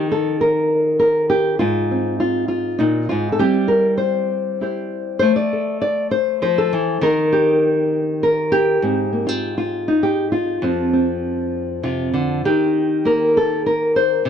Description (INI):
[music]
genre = folk, solo fingerstyle acoustic guitar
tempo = 100 BPM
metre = 3/4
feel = straight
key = unclear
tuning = A4 = 438 Hz
[part]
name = nylon-string guitar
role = solo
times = 0.0-14.3 s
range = F2 to D5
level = -16 LUFS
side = left 1 dB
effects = none
[sound]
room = light reverb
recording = dark, warm production, lossy compression artefacts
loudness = -16 LUFS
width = side -8 dB against mid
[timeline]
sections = 0.0-12.4 A section; 12.4-14.3 B section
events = none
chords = 0.0 N.C.; 1.6 Ab; 3.4 C/G; 5.2 Am; 7.0 N.C.; 8.8 Ab; 10.6 F5; 12.4 Eb